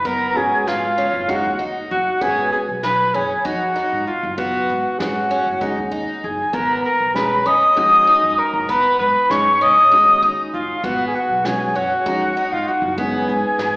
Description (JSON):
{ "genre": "progressive instrumental, band music in an uneven meter", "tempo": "195 BPM (eighths)", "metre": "7/8", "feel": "straight", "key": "G# dorian", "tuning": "A4 = 441 Hz", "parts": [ { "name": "concert flute", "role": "melody", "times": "0.0-13.8 s", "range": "E#5 to D#6", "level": "-16 LUFS", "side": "equal", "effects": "slapback echo" }, { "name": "clear alto saxophone", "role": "second line", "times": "0.0-13.8 s", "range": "E#4 to D#5", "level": "-24 LUFS", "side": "equal", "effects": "slapback echo" }, { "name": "picked twelve-string acoustic guitar", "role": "arpeggios", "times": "0.0-13.3 s", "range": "B3 to D#4", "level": "-26 LUFS", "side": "equal", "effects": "slapback echo" }, { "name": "upright bass", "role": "bass", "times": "0.0-13.8 s", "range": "F#1 to G#2", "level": "-32 LUFS", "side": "equal", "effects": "none" }, { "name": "soft brush drum kit", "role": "drums", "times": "0.0-13.7 s", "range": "hi-hat, kick drum, snare drum", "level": "-32 LUFS", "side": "equal", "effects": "none" }, { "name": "dark grand piano", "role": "accompaniment", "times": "0.3-13.4 s", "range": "G#3 to G#4", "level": "-27 LUFS", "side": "equal", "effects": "slapback echo" } ], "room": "moderate lush hall reverb, RT60 2.8 s", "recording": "live gig heard through the venue's PA, recital hall reverb, AM radio sound", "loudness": "-15 LUFS", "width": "side -23 dB against mid", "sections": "0.0-13.8 A section", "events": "none", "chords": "0.0 G#m7" }